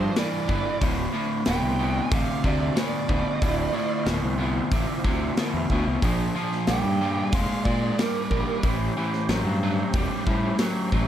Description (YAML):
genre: blues rock power trio and southern rock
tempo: 92 BPM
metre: 4/4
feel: straight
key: D minor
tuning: A4 = 441 Hz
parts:
  - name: bluesy overdriven lead guitar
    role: second line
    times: 0.0-8.6 s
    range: Bb4 to G5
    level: -30 LUFS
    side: right 6 dB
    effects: distortion
  - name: overdriven tonewheel organ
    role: sustained chords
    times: 0.0-11.1 s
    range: C#4 to C5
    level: -36 LUFS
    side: right 2 dB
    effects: chorus vibrato, fast rotary speaker
  - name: overdriven electric guitar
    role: riff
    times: 0.0-11.1 s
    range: D2 to Ab3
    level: -26 LUFS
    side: equal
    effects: none
  - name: fuzz fingered electric bass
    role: bass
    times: 0.0-11.0 s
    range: D1 to Bb2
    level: -28 LUFS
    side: equal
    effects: overdrive
  - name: big rock drum kit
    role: drums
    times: 0.2-11.1 s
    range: hi-hat, kick drum, snare drum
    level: -27 LUFS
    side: equal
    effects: none
room: light reverb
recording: none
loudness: -22 LUFS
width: side -10 dB against mid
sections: 0.0-11.1 A section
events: lead electric guitar solo 0.0-11.1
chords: 0.0 Gm7; 0.8 Dm7; 6.0 Bb7; 8.6 A7#9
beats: 0.16 | 0.81 1.46 2.11 2.76 | 3.41 4.06 4.72 5.37 | 6.02 6.67 7.33 7.98 | 8.63 9.29 9.94 10.59